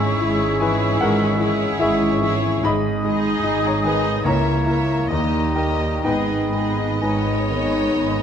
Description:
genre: classical, romantic movement for piano and orchestra.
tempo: 60-77 BPM.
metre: 4/4.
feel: rubato.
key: G# minor.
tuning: A4 = 440 Hz.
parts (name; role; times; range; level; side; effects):
clear grand piano; melody; 0.0-8.2 s; C#2 to B5; -23 LUFS; left 3 dB; none.
rich studio violin section; melody; 0.0-8.2 s; C#5 to E5; -32 LUFS; left 1 dB; none.
clear oboe; second line; 0.0-8.2 s; C#5 to E5; -30 LUFS; right 2 dB; none.
mellow hollow small flute group; second line; 0.0-8.2 s; A#5 to D#6; -30 LUFS; left 3 dB; none.
warm clarinet; second line; 0.0-8.2 s; D#4 to G#4; -30 LUFS; equal; none.
warm studio violin section; second line; 0.0-8.2 s; G4 to C#5; -30 LUFS; left 1 dB; none.
mellow bassoon; accompaniment; 0.0-8.2 s; G3 to A#3; -31 LUFS; right 4 dB; none.
rich studio viola section; accompaniment; 0.0-8.2 s; A#3 to E4; -29 LUFS; right 2 dB; none.
mellow French horn section; sustained chords; 0.0-8.2 s; G3 to E4; -27 LUFS; left 3 dB; none.
clear studio double bass section; bass; 0.0-8.2 s; G#1 to D#2; -26 LUFS; right 4 dB; none.
rich studio cello section; bass; 0.0-8.2 s; C#2 to G#2; -28 LUFS; right 4 dB; none.
room: moderate scoring stage reverb, RT60 1.7 s.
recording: none.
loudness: -17 LUFS.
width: side -8 dB against mid.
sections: 0.0-8.2 A section.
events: none.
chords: 0.0 C#m/G#; 2.6 G#m; 4.2 A#dim/C#; 5.1 D#; 6.0 G#m.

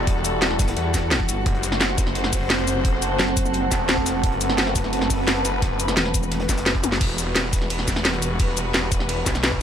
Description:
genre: dark technical drum and bass.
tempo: 173 BPM.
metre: 4/4.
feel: straight.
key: E minor.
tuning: A4 = 440 Hz.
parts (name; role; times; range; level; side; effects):
muted studio string section; sustained chords; 0.0-9.6 s; C3 to C5; -28 LUFS; left 2 dB; sidechain pumping.
snarling distorted saw bass; bass; 0.0-9.6 s; E1 to B1; -26 LUFS; equal; distortion, tube saturation, sidechain pumping.
deep dark ambient pad; texture; 0.0-7.0 s; G3 to B5; -27 LUFS; right 2 dB; chorus, built-in reverb, sidechain pumping.
crunchy breakbeat drum kit; drums; 0.1-9.5 s; hi-hat, snare drum; -37 LUFS; equal; none.
drum and bass drum kit; drums; 0.1-9.5 s; cabasa, crash cymbal, hi-hat, ride cymbal, snare drum, toms; -23 LUFS; left 1 dB; none.
electronic kick drum; drums; 0.1-9.6 s; none; -24 LUFS; equal; none.
metallic wobble bass; bass; 0.6-3.7, 6.0-6.5 s; E1 to E2; -25 LUFS; equal; chorus.
room: light reverb.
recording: none.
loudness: -19 LUFS.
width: side -9 dB against mid.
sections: 0.0-7.0 A section; 7.0-9.6 A section.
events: drop 0.0-7.0, 7.0-9.6; drum fill 6.8.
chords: 0.0 Emadd9; 1.5 F#dim; 7.0 Emadd9.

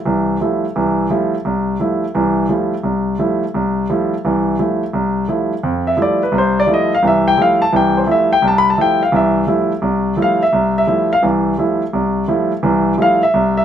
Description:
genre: jazz.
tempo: 172 BPM.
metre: 4/4.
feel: swing 64% on 8ths.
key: F major.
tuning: A4 = 441 Hz.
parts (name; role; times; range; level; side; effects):
warm grand piano; solo; 0.1-13.6 s; C2 to B5; -13 LUFS; equal; none.
room: moderate club reverb, RT60 0.8 s.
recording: none.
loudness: -13 LUFS.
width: side -9 dB against mid.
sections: 0.0-5.6 A section; 5.6-13.6 B section.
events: none.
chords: 0.0 Fmaj9.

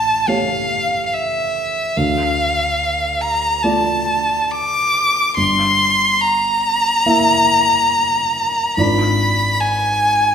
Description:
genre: classical, romantic duo for violin and grand piano.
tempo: 71 BPM.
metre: 4/4.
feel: rubato.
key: D minor.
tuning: A4 = 439 Hz.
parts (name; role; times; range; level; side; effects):
bright violin; melody; 0.0-10.3 s; E5 to D6; -15 LUFS; equal; none.
dark baby grand piano; accompaniment; 0.0-10.3 s; G1 to E5; -21 LUFS; equal; none.
room: wet recital hall reverb, RT60 1.3 s.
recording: heard from further back in the room.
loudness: -14 LUFS.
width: side -8 dB against mid.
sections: 0.0-10.3 A section.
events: none.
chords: 0.0 A7; 2.0 Dm; 5.4 Edim/G; 8.8 G#dim7.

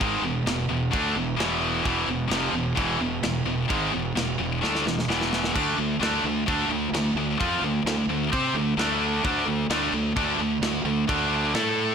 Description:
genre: heavy metal.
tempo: 130 BPM.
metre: 4/4.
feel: straight.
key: unclear.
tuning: A4 = 441 Hz.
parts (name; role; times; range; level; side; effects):
heavy high-gain guitar; riff; 0.0-11.9 s; E2 to C5; -26 LUFS; left 10 dB; distortion.
high-gain distorted guitar; riff; 0.0-11.9 s; E2 to C5; -27 LUFS; right 10 dB; distortion.
fuzz fingered electric bass; bass; 0.0-11.9 s; E1 to C3; -31 LUFS; equal; overdrive.
tight metal drum kit; drums; 0.0-11.7 s; crash cymbal, kick drum, snare drum, splash cymbal; -30 LUFS; right 1 dB; soft clipping on kick.
room: light reverb, studio reverb.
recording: blown-out, overdriven recording, overdrive.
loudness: -22 LUFS.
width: side -7 dB against mid.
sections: 0.0-11.9 A section.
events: drum fill 4.6-5.5.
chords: 0.0 E; 5.5 D5.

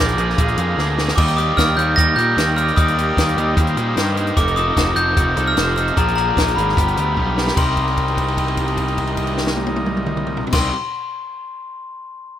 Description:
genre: indie rock.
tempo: 150 BPM.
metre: 4/4.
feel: straight.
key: C minor.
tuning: A4 = 440 Hz.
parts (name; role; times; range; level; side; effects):
glockenspiel with hard plastic mallets; melody; 0.0-10.7 s; Bb5 to Bb6; -21 LUFS; left 1 dB; slapback echo.
clear trumpet; second line; 0.0-10.7 s; Bb4 to F5; -32 LUFS; equal; slapback echo.
combo organ; sustained chords; 0.0-10.7 s; Eb4 to B5; -30 LUFS; equal; none.
overdriven electric guitar; riff; 0.0-10.7 s; G2 to A4; -26 LUFS; left 5 dB; none.
overdriven electric guitar; riff; 0.0-10.7 s; G2 to A4; -26 LUFS; right 7 dB; wide subtle chorus, slapback echo.
fuzz picked electric bass; bass; 0.0-10.7 s; F1 to Bb2; -21 LUFS; equal; overdrive.
compact cocktail drum kit; drums; 0.1-10.6 s; crash cymbal, hi-hat, kick drum, snare drum, toms; -21 LUFS; equal; none.
room: small room ambience.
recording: rough home demo mix.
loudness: -15 LUFS.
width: side -11 dB against mid.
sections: 0.0-7.6 A section; 7.6-10.8 B section.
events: drum fill 0.8-1.2, 7.2-7.6; held note 7.6-10.5.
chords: 0.0 Bb7; 1.2 Ebmaj7; 4.4 F7sus4; 6.0 Bb7; 6.8 G7; 7.6 Cm11.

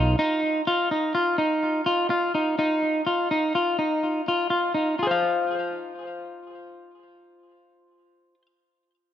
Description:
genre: progressive instrumental, progressive.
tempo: 125 BPM.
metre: 5/4.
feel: straight.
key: unclear.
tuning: A4 = 440 Hz.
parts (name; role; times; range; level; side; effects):
electric guitar at the edge of break-up; arpeggios; 0.0-8.5 s; Eb4 to F5; -22 LUFS; left 1 dB; digital delay.
room: moderate plate reverb, RT60 1.9 s.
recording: bright 1980s-style digital production.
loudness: -22 LUFS.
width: side -10 dB against mid.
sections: 0.0-5.0 A section; 5.0-7.4 B section.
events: none.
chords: 0.2 Ebsus2; 5.0 F5.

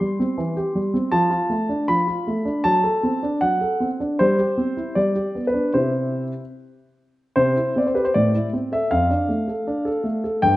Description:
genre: classical-period piano sonatina.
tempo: 78 BPM.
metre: 2/4.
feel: rubato.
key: unclear.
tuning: A4 = 440 Hz.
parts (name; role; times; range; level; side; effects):
warm grand piano; solo; 0.0-10.6 s; F2 to C6; -19 LUFS; equal; none.
room: moderate recital hall reverb, RT60 1.3 s.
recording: dark, warm production, nothing above 10.8 kHz.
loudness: -19 LUFS.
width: side -16 dB against mid.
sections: 0.0-7.4 A section; 7.4-10.6 B section.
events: none.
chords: 0.0 C; 1.1 Dm/F; 2.7 D7/F#; 4.2 C/G; 5.0 G; 5.8 C; 8.1 Am; 8.9 Dm/F.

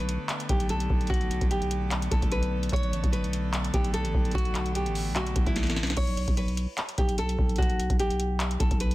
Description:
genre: hip hop, trap.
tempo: 148 BPM.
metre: 4/4.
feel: half-time.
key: B minor.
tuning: A4 = 442 Hz.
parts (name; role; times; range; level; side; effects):
nylon-string guitar; melody; 0.0-8.9 s; E4 to C#5; -32 LUFS; equal; tape echo.
pipe organ, full organ; sustained chords; 0.0-5.9 s; D3 to B3; -37 LUFS; left 1 dB; none.
growling 808-style bass; bass; 0.0-8.9 s; A1 to B1; -29 LUFS; equal; none.
booming analog drum machine; drums; 0.0-8.9 s; crash cymbal, handclaps, hi-hat, kick drum, snare drum; -27 LUFS; equal; none.
room: digital ambience.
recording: dense, heavily limited modern master.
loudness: -24 LUFS.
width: side -17 dB against mid.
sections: 0.0-6.0 A section; 6.0-8.9 B section.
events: drum fill 5.6-6.0.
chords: 0.0 Bm7; 6.0 B5.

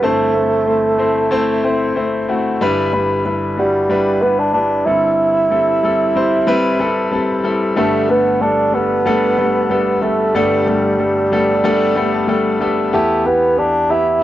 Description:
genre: pop.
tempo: 93 BPM.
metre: 4/4.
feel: swing 55% on 16ths.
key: G major.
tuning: A4 = 440 Hz.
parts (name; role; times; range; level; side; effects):
mellow bassoon; melody; 0.0-14.2 s; G3 to E4; -16 LUFS; right 2 dB; cassette tape.
warm concert grand piano; accompaniment; 0.0-14.2 s; G1 to B5; -16 LUFS; left 2 dB; cassette tape.
room: wet booth ambience, RT60 0.2 s.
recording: home recording on cassette.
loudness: -13 LUFS.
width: side -13 dB against mid.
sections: 0.0-7.8 A section; 7.8-14.2 B section.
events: grand piano fill 5.8-7.8, 11.6-12.9.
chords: 0.0 Am/G; 2.6 Em7/G; 4.9 C6/G; 7.8 Gadd9; 12.9 Em.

